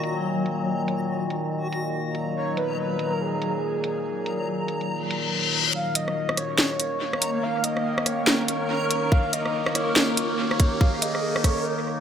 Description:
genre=deep dubstep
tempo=142 BPM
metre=4/4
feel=swing 60% on 16ths, half-time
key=Eb minor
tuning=A4 = 439 Hz
part: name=overtone-sweeping drone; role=sustained chords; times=0.0-12.0 s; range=Bb2 to Bb3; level=-29 LUFS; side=left 1 dB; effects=chorus, built-in reverb
part: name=garage drum kit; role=drums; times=0.0-11.5 s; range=hi-hat, rim click, snare drum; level=-24 LUFS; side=equal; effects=overdrive, low-pass filter on hats, low-pass filter on snare, dub echo
part: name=backwards swelling texture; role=texture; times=0.0-11.7 s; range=Gb3 to Bb5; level=-30 LUFS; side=equal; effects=built-in reverb
part: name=breathy flute-like synth lead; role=melody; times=2.4-11.7 s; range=Ab4 to F5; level=-29 LUFS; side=right 1 dB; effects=analog chorus, dub echo
part: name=reverse cymbal and riser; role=sound effects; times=5.1-11.7 s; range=none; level=-30 LUFS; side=left 3 dB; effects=none
part: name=saturated sub bass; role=bass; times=5.7-11.6 s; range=Eb1 to Gb1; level=-47 LUFS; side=equal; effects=none
part: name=electronic kick drum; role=drums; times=9.1-11.5 s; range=none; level=-19 LUFS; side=equal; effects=overdrive
room=wet plate reverb, RT60 1.4 s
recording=echo-heavy mix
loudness=-22 LUFS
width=side -8 dB against mid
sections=0.0-5.7 A section; 5.7-12.0 B section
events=reverse cymbal 5.1-5.7; build-up 5.7-12.0; riser 5.7-11.7; break 11.7-12.0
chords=0.0 Ebm/Bb; 5.7 Eb5; 9.1 Gb

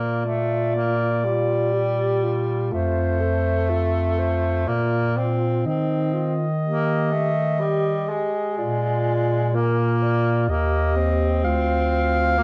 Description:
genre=classical, lyrical piece for single-reed quartet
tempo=61 BPM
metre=3/4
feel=rubato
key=Bb major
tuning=A4 = 440 Hz
part: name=mellow clarinet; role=melody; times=0.0-12.4 s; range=A4 to F5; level=-28 LUFS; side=equal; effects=none
part: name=dark alto saxophone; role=second line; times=0.0-12.4 s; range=Eb4 to A4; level=-32 LUFS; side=equal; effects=none
part: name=warm tenor saxophone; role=accompaniment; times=0.0-12.4 s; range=G3 to C4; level=-28 LUFS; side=equal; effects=none
part: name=mellow bass clarinet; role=bass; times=0.0-12.4 s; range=D2 to Eb3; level=-26 LUFS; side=equal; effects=none
room=moderate large studio reverb, RT60 1.3 s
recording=dark, warm production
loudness=-22 LUFS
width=mono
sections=0.0-12.4 A section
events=none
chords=0.0 Bb; 2.7 F; 4.7 Bb; 5.7 Eb; 8.6 Bb7; 10.5 Eb; 11.4 Bb/D (rootless)

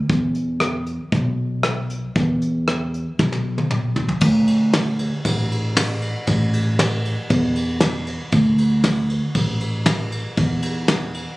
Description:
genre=honky-tonk and classic country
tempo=117 BPM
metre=4/4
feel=straight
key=unclear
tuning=A4 = 440 Hz
part: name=upright bass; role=bass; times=0.1-11.2 s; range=A1 to E2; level=-20 LUFS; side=equal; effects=none
part: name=soft brush drum kit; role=drums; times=0.1-11.3 s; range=crash cymbal, hi-hat, kick drum, ride cymbal, rim click, snare drum, toms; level=-22 LUFS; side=equal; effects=none
room=little or no reverb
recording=recorded on a phone in the room, club reverb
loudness=-18 LUFS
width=side -20 dB against mid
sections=0.0-4.2 A section; 4.2-11.4 B section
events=drum fill 3.2-4.2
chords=none

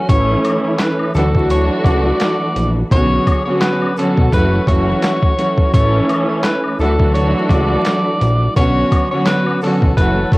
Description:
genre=hip hop, boom-bap hip-hop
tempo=85 BPM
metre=4/4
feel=swing 55% on 16ths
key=unclear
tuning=A4 = 440 Hz
part: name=breathy tenor saxophone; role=melody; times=0.0-10.4 s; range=A4 to D5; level=-20 LUFS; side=equal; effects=high-pass filter, low-pass filter, cassette tape
part: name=dark studio string section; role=accompaniment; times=0.0-10.4 s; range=D3 to F#4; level=-17 LUFS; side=right 1 dB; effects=high-pass filter, low-pass filter, cassette tape
part: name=mellow horn section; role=stabs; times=0.1-10.4 s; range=C#3 to A4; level=-30 LUFS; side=left 2 dB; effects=none
part: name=fat analog bass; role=bass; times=0.1-10.4 s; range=F#1 to D2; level=-16 LUFS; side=equal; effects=transformer saturation
part: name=boom bap sampler-style drum kit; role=drums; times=0.1-10.4 s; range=handclaps, hi-hat, kick drum, snare drum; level=-16 LUFS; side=equal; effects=none
part: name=tube shaker and woodblock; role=percussion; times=0.1-10.4 s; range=none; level=-29 LUFS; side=left 2 dB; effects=none
room=light reverb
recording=home recording on cassette, vinyl crackle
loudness=-12 LUFS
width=side -21 dB against mid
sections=0.1-10.4 A section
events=none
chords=0.1 A; 1.1 Dadd9; 2.9 Bmadd9; 4.3 F#m7; 5.7 A; 6.8 Dadd9; 8.6 Bmadd9

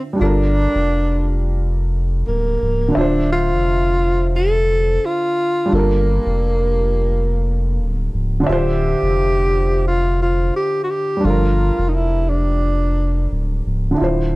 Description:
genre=lo-fi hip hop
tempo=87 BPM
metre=4/4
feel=swing 56% on 16ths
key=unclear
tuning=A4 = 440 Hz
part: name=breathy tenor saxophone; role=melody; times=0.0-13.7 s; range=Bb3 to A4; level=-20 LUFS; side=equal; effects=none
part: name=dark upright piano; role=accompaniment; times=0.0-14.4 s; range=D3 to E5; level=-23 LUFS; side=right 1 dB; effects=cassette tape
part: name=saturated sub bass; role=bass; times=0.2-14.4 s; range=C#1 to G1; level=-18 LUFS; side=equal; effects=none
room=light reverb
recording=dark, warm production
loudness=-15 LUFS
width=side -21 dB against mid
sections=0.0-14.4 A section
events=none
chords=0.2 Gm7; 3.0 Dm7; 5.7 Gm7; 8.5 Dm7; 11.2 Gm7

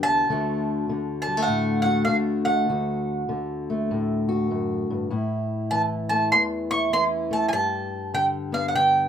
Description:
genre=acoustic country blues, solo or duo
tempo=99 BPM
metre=4/4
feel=swing 63% on 8ths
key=D major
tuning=A4 = 436 Hz
part: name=mandolin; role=melody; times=0.0-9.1 s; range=F5 to C#6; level=-22 LUFS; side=right 2 dB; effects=none
part: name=fingerpicked steel-string acoustic guitar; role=accompaniment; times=0.0-9.1 s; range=D2 to G4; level=-25 LUFS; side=left 2 dB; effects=none
room=moderate studio ambience, RT60 0.5 s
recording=close, detailed microphones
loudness=-22 LUFS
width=side -8 dB against mid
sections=0.0-9.1 A section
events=none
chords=0.3 D; 5.1 A; 7.5 G

